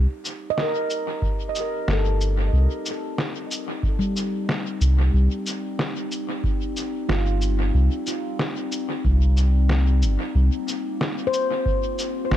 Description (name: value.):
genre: ambient dub.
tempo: 92 BPM.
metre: 4/4.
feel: straight.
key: C dorian.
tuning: A4 = 441 Hz.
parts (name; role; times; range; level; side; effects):
warbly tape-like pad; sustained chords; 0.0-12.4 s; G3 to C5; -31 LUFS; left 2 dB; chorus, built-in reverb.
soft dub sub bass; bass; 0.0-12.4 s; G1 to C2; -18 LUFS; equal; none.
electronic shaker and snare drum; drums; 0.3-12.4 s; none; -29 LUFS; equal; small room ambience, dub echo.
handpan; arpeggios; 0.5-12.4 s; G3 to Eb5; -28 LUFS; equal; tape echo.
electronic kick drum; drums; 1.2-11.8 s; none; -25 LUFS; equal; small room ambience.
room: little or no reverb.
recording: none.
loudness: -21 LUFS.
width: side -12 dB against mid.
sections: 0.0-12.4 A section.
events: fade-in on ambient pad 0.0-12.4.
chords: 0.0 Cm7; 10.4 Bbsus2.